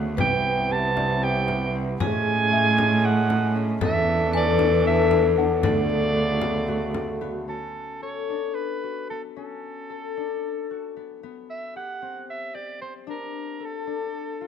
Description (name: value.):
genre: contemporary instrumental, chamber music in an uneven meter.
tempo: 227 BPM (eighths).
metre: 7/8.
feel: straight.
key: D lydian.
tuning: A4 = 444 Hz.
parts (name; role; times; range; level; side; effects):
hand-pumped harmonium; sustained chords; 0.0-7.5 s; C3 to A4; -32 LUFS; equal; none.
concert harp; arpeggios; 0.0-14.5 s; B3 to A4; -28 LUFS; left 11 dB; none.
bright cello; bass; 0.0-7.5 s; C2 to A2; -25 LUFS; right 3 dB; none.
small celesta; texture; 0.0-5.9 s; F#4 to G#5; -36 LUFS; left 5 dB; none.
breathy soprano saxophone; melody; 0.2-14.5 s; A4 to A5; -27 LUFS; right 3 dB; none.
vibraphone with medium mallets; second line; 0.2-7.5 s; F#4 to B4; -29 LUFS; right 6 dB; none.
frame drum; percussion; 0.2-7.3 s; none; -30 LUFS; left 5 dB; none.
room: light reverb.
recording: close, detailed microphones.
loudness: -21 LUFS.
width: side -8 dB against mid.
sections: 0.0-7.5 A section; 7.5-14.5 B section.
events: none.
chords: 0.2 Cmaj7; 2.0 Amaj7; 3.8 E7sus4; 5.6 Bm7/D; 7.5 Dmaj7; 11.2 C5; 13.1 Bbmaj7.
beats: | 0.18 0.44 0.70 0.96 1.22 1.48 1.74 | 2.00 2.26 2.52 2.78 3.04 3.29 3.55 | 3.81 4.07 4.33 4.59 4.85 5.11 5.37 | 5.63 5.89 6.16 6.42 6.68 6.95 7.21 | 7.48 7.75 8.02 8.29 8.56 8.83 9.10 | 9.36 9.63 9.90 10.16 10.43 10.69 10.96 | 11.22 11.48 11.75 12.01 12.28 12.54 12.81 | 13.08 13.34 13.61 13.88 14.15 14.42.